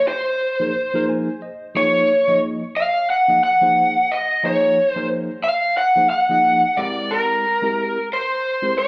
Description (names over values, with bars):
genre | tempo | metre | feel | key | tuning
jazz | 90 BPM | 4/4 | swing 54% on 16ths | Eb dorian | A4 = 440 Hz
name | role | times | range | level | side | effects
lead guitar through a small cranked amp | melody | 0.0-8.9 s | Bb4 to Gb5 | -19 LUFS | equal | overdrive
tine electric piano | accompaniment | 0.1-8.9 s | F3 to Ab5 | -28 LUFS | equal | phaser, slapback echo
room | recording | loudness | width
wet club reverb, RT60 0.6 s | live gig heard through the venue's PA, club reverb | -19 LUFS | mono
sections
0.0-8.9 A section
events
tine electric piano fill 0.8-1.8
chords
0.0 Fm7; 1.8 Ebm9; 6.8 C7b13